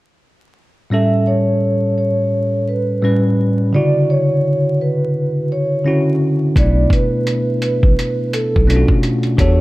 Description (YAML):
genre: lo-fi hip hop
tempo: 85 BPM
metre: 4/4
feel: swing 60% on 16ths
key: B minor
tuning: A4 = 441 Hz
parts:
  - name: vibraphone with soft mallets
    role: melody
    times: 0.9-9.6 s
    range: A4 to E5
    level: -20 LUFS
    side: right 1 dB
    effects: low-pass filter
  - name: bell-like tine electric piano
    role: accompaniment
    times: 0.9-9.6 s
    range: A2 to B4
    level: -16 LUFS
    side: equal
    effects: fast stereo tremolo, cassette tape, low-pass filter
  - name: round analog bass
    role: bass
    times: 6.6-9.6 s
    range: A1 to E2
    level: -15 LUFS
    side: equal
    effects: none
  - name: lo-fi sampler-style drum kit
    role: drums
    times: 6.6-9.6 s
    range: hi-hat, kick drum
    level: -15 LUFS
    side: equal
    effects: vintage 12-bit sampler grit
room: light reverb, digital ambience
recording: dark, warm production, vinyl crackle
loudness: -14 LUFS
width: side -19 dB against mid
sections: 0.9-9.6 A section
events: none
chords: 0.9 A7; 3.0 A9; 3.7 Dmaj9; 6.6 Bm11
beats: | 0.91 1.62 2.32 3.03 | 3.74 4.44 5.15 5.85 | 6.56 7.26 7.97 8.68 | 9.38